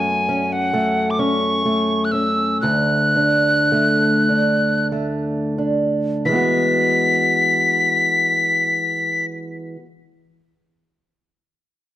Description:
celtic folk, Celtic slow air; 28-45 BPM (dotted quarters); 6/8; rubato; E mixolydian; A4 = 440 Hz
tin whistle; melody; 0.0-9.3 s; F#5 to B6; -18 LUFS; left 1 dB
fingerpicked acoustic archtop guitar; accompaniment; 0.0-9.8 s; D2 to F#4; -20 LUFS; right 1 dB
moderate recital hall reverb, RT60 1.5 s; dark, warm production; -16 LUFS; side -13 dB against mid
0.0-6.3 A section; 6.3-10.5 B section
slowing down 0.0-6.3
0.0 F#m; 2.6 D; 6.3 Eadd9

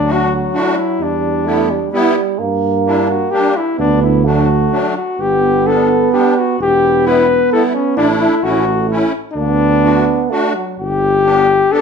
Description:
alpine folk, alpine dance band; 129 BPM; 3/4; straight; D major; A4 = 440 Hz
mellow flugelhorn; melody; 0.0-11.8 s; C#4 to B4; -15 LUFS; left 4 dB
clear euphonium; second line; 0.0-10.8 s; F#3 to B3; -18 LUFS; right 8 dB
dark tuba; bass; 0.0-11.7 s; E1 to G2; -18 LUFS; right 1 dB
musette accordion; accompaniment; 0.1-11.8 s; F#3 to G4; -18 LUFS; equal
moderate large studio reverb, RT60 0.9 s; band playing live in one room; -12 LUFS; side -6 dB against mid
0.0-10.8 A section; 10.8-11.8 B section
0.0 D; 1.0 Em; 2.4 Gm; 3.8 D; 5.2 G; 6.6 Em; 8.0 Asus4; 8.4 A; 9.4 D; 10.8 G

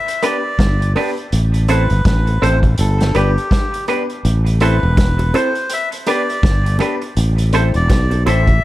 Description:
roots reggae; 82 BPM; 4/4; swing 59% on 16ths; A minor; A4 = 440 Hz
melodica; melody; 0.0-8.6 s; G4 to E5; -22 LUFS; left 1 dB; dub echo
vintage drum kit; drums; 0.1-8.6 s; hi-hat, kick drum, snare drum; -18 LUFS; equal
semi-hollow electric guitar; accompaniment; 0.2-8.4 s; B3 to C5; -23 LUFS; right 5 dB; dub echo
warm upright piano; stabs; 0.2-8.4 s; B3 to C5; -22 LUFS; left 3 dB
sustaining fretless electric bass; bass; 0.6-8.6 s; E1 to B1; -14 LUFS; equal
bongos; percussion; 5.0-8.5 s; -28 LUFS; right 3 dB
small room ambience; -13 LUFS; side -16 dB against mid
0.0-8.6 A section
0.0 G; 1.3 Am; 2.8 G; 4.2 Am; 5.7 G; 7.2 Am

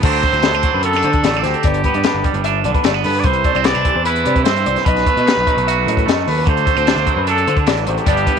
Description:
math rock and midwest emo; 150 BPM; 4/4; straight; A4 = 440 Hz
warm trumpet; melody; 0.0-8.4 s; G4 to D5; -19 LUFS; right 2 dB
twangy electric guitar; accompaniment; 0.0-8.4 s; F#2 to F#4; -20 LUFS; right 15 dB
electric guitar through a small old amp; arpeggios; 0.0-8.4 s; F#4 to E5; -23 LUFS; left 13 dB
fuzz picked electric bass; bass; 0.0-8.3 s; G1 to D3; -21 LUFS; equal; overdrive
compact cocktail drum kit; drums; 0.0-8.4 s; crash cymbal, hi-hat, kick drum, snare drum; -18 LUFS; left 2 dB
studio reverb; 1960s-style stereo with parts hard left and right; -13 LUFS; side -7 dB against mid
0.0-8.4 A section
0.0 D7; 1.6 G; 3.3 Cmaj9; 4.9 B7; 6.5 D7

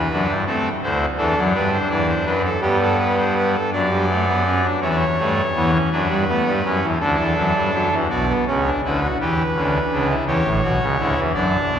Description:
classical, baroque-style 3-part fugue for pipe organ; 55 BPM (dotted quarters); 6/8; straight; A4 = 436 Hz
pipe organ, trumpet; solo; 0.0-11.8 s; A1 to D5; -17 LUFS; equal
wet cathedral reverb, RT60 4.6 s; heard from further back in the room; -17 LUFS; side -8 dB against mid
0.0-8.1 A section; 8.1-11.8 B section
0.5 D7; 1.6 G; 3.7 D/F#; 4.8 A7/E; 5.9 D/F#; 7.0 D; 8.1 Bm; 9.2 Em; 10.3 A7

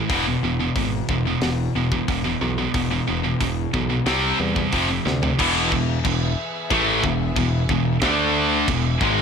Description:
heavy metal; 91 BPM; 4/4; straight; E phrygian dominant; A4 = 441 Hz
high-gain distorted guitar; riff; 0.0-9.2 s; E2 to D4; -25 LUFS; left 13 dB; distortion
scooped high-gain guitar; riff; 0.0-9.2 s; E2 to D4; -23 LUFS; right 8 dB; distortion
picked electric bass; bass; 0.0-9.2 s; E1 to E2; -26 LUFS; equal
tight metal drum kit; drums; 0.1-9.2 s; crash cymbal, hi-hat, kick drum, snare drum, toms; -27 LUFS; equal
rich chamber string section; sustained chords; 5.4-9.2 s; D3 to E5; -33 LUFS; left 3 dB
crunchy overdriven guitar; riff; 5.4-9.2 s; E2 to D4; -25 LUFS; equal
studio ambience; blown-out, overdriven recording, overdrive; -19 LUFS; side -6 dB against mid
0.0-5.4 A section; 5.4-9.2 B section
drum fill 5.1-5.4; half time 5.4-9.2
0.1 E5; 4.1 C5; 4.7 F5; 5.4 E; 8.0 D5; 8.7 E

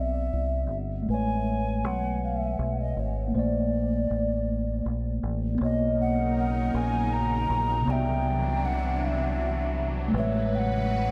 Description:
slow six-eight R&B; 53 BPM (dotted quarters); 6/8; straight; A4 = 440 Hz
mellow alto ocarina; melody; 0.0-11.1 s; C#5 to A#5; -33 LUFS; equal; delay
mellow tine electric piano; accompaniment; 0.0-11.1 s; C3 to E5; -32 LUFS; equal
deep dub fingered electric bass; bass; 0.0-11.1 s; G1 to C2; -31 LUFS; equal
lush unison pad; sustained chords; 5.9-11.1 s; C3 to B4; -37 LUFS; equal; chorus, phaser
wet cathedral reverb, RT60 4.9 s; dreamy mix soaked in reverb; -27 LUFS; mono
0.0-5.6 A section; 5.6-11.1 B section
0.0 Cmaj9; 1.1 Amaj9; 3.3 A#maj9; 5.6 Bmaj9; 7.9 Cmaj9; 10.1 Amaj9

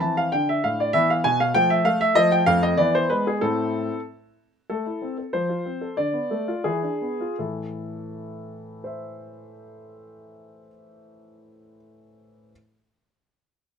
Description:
classical-period piano sonatina; 80-99 BPM; 2/4; rubato; A minor; A4 = 440 Hz
warm baby grand piano; solo; 0.0-12.5 s; F2 to A5; -21 LUFS; equal
light reverb; close, detailed microphones; -20 LUFS; side -7 dB against mid
0.0-4.7 A section; 4.7-7.4 B section; 7.4-10.3 C section
slowing down 4.1-7.4
0.3 D5; 0.9 E5; 1.5 Fmaj9; 2.8 E; 3.4 Am; 5.3 F; 6.0 Bm7b5/D; 6.7 E7b9; 7.4 Am

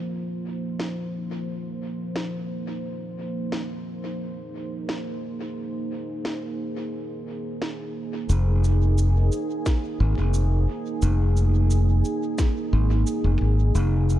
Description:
ambient dub; 88 BPM; 4/4; straight; F minor; A4 = 440 Hz
deep dark ambient pad; sustained chords; 0.0-14.2 s; F3 to C5; -29 LUFS; right 2 dB; chorus, built-in reverb
electronic snare drum and cabasa; drums; 0.8-14.2 s; -34 LUFS; equal; small room reverb, dub echo
modern bright fingered electric bass; bass; 8.3-14.2 s; F1 to Ab1; -19 LUFS; equal; tube saturation
electronic kick drum; drums; 9.7-12.5 s; -22 LUFS; equal; small room reverb
digital ambience; dark, warm production; -23 LUFS; side -13 dB against mid
0.0-8.3 A section; 8.3-14.2 B section
0.0 Fm7

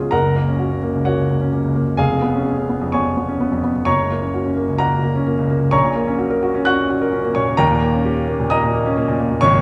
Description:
classical, virtuoso piano study; 129 BPM; 4/4; rubato; F# major; A4 = 441 Hz
warm baby grand piano; solo; 0.0-9.6 s; E#1 to F#6; -18 LUFS; equal
moderate recital hall reverb, RT60 1.6 s; -18 LUFS; mono
0.1-9.6 A section
0.1 F#; 2.0 C#7/E#; 3.9 F#; 5.7 F#/A#; 7.6 D#7

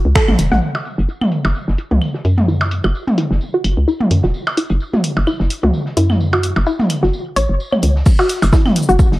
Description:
minimal techno; 129 BPM; 4/4; swing 55% on 16ths; F# minor; A4 = 438 Hz
hollow knocking FM bass; bass; 0.0-9.2 s; E1 to F#2; -15 LUFS; equal; tube saturation, sidechain pumping
vintage drum kit; drums; 0.1-9.2 s; hi-hat, snare drum, tambourine; -36 LUFS; equal; sidechain pumping on hats, high-pass filter on hats, low-pass filter on hats, high-pass filter on snare, low-pass filter on snare, sidechain pumping on perc, high-pass filter on perc, low-pass filter on perc, high-pass filter on room, low-pass filter on room
resonant blip pluck; riff; 0.2-9.0 s; E4 to F#5; -20 LUFS; equal; chorus, sidechain pumping, analog delay
electronic kick drum; drums; 0.2-0.3, 8.1-9.1 s; -12 LUFS; equal; overdrive
punchy analog drum machine; drums; 0.2-9.1 s; cabasa, crash cymbal, finger snaps, hi-hat; -25 LUFS; left 1 dB; overdrive, low-pass filter on hats, low-pass filter on snare, low-pass filter on cymbals, low-pass filter on perc
electronic toms, claves and percussion blips; percussion; 0.3-8.7 s; -18 LUFS; equal
digital ambience; -14 LUFS; side -18 dB against mid
0.6-8.1 A section; 8.1-9.2 B section
band accent 0.2; filter sweep on synth arpeggio sound 0.6-8.1; drop 8.1-9.2
0.0 F#5

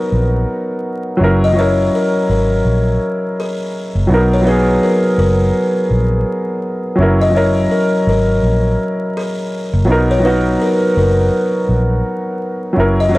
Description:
lo-fi hip hop; 83 BPM; 4/4; swing 60% on 16ths; A4 = 442 Hz
buzzing kalimba; melody; 0.0-13.2 s; G#4 to D#5; -18 LUFS; left 2 dB
warm upright piano; accompaniment; 0.0-13.2 s; F#3 to A#4; -16 LUFS; equal; cassette tape
vintage muted fingered electric bass; bass; 0.1-13.2 s; F#1 to B1; -15 LUFS; equal
light reverb; dry, gritty hardware recording, vinyl crackle; -13 LUFS; side -19 dB against mid
0.0-13.2 A section
0.0 Bmaj7; 1.2 F#7; 4.1 Bmaj7; 7.0 F#7; 9.9 Bmaj7

